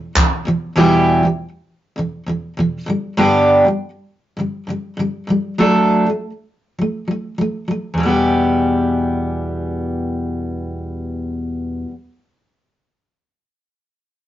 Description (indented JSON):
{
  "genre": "pop",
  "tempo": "100 BPM",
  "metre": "4/4",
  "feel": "swing 60% on 16ths",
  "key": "E minor",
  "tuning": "A4 = 440 Hz",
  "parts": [
    { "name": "picked steel-string acoustic guitar", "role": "accompaniment", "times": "0.0-11.9 s", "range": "E2 to A4", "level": "-16 LUFS", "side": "equal", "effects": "none" }
  ],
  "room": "moderate small room reverb, RT60 0.6 s",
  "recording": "rough rehearsal-room recording, warm saturation, nothing above 7.5 kHz",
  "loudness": "-16 LUFS",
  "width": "side -13 dB against mid",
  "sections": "0.0-8.0 A section; 8.0-10.4 B section",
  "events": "none",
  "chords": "0.0 Em; 2.9 G; 5.6 D/F#; 8.0 Em"
}